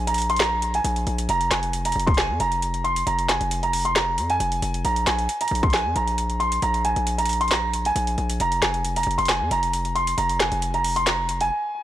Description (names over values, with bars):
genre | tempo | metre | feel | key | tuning
hip hop, trap | 135 BPM | 4/4 | half-time | unclear | A4 = 441 Hz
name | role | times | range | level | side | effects
warm concert grand piano | melody | 0.0-11.8 s | Ab5 to C6 | -23 LUFS | right 1 dB | ping-pong delay
distorted 808-style bass | bass | 0.0-11.5 s | F1 to F2 | -27 LUFS | left 1 dB | distortion
trap drum kit | drums | 0.1-11.5 s | handclaps, hi-hat, kick drum, snare drum | -25 LUFS | equal | none
room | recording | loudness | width
light reverb | blown-out, overdriven recording, overdrive | -20 LUFS | side -12 dB against mid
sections
0.0-11.8 A section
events
break 11.5-11.8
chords
0.0 Bb5; 1.3 Fm; 4.8 Bb5; 8.4 Fm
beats
0.40 0.84 | 1.29 1.73 2.18 2.62 | 3.07 3.51 3.96 4.40 | 4.84 5.29 5.73 6.18 | 6.62 7.07 7.51 7.96 | 8.40 8.85 9.29 9.73 | 10.18 10.62 11.07 11.51